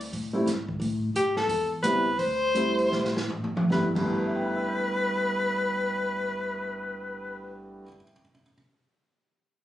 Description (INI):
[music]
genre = jazz, small-group swing and bop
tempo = 150-177 BPM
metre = 4/4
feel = swing 63% on 8ths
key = G major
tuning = A4 = 440 Hz
[part]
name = upright bass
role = bass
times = 0.0-7.8 s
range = G1 to A2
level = -34 LUFS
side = left 1 dB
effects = none
[part]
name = open jazz drum kit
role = drums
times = 0.0-4.0 s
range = crash cymbal, hi-hat, kick drum, snare drum, toms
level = -32 LUFS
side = right 1 dB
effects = none
[part]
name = warm grand piano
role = accompaniment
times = 0.3-8.5 s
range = G2 to G6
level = -29 LUFS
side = equal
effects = none
[part]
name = breathy soprano saxophone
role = melody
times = 1.2-7.7 s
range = G4 to C5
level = -27 LUFS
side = left 1 dB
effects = none
[sound]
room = light reverb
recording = recorded on a phone in the room, club reverb, compression, nothing above 10.9 kHz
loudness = -25 LUFS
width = side -13 dB against mid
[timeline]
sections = 0.0-3.7 A section; 3.7-6.9 B section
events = slowing down 0.8-3.7; drum fill 2.9-3.7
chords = 0.0 D7sus4 (rootless); 0.8 Am9; 2.2 D7sus4; 3.7 G69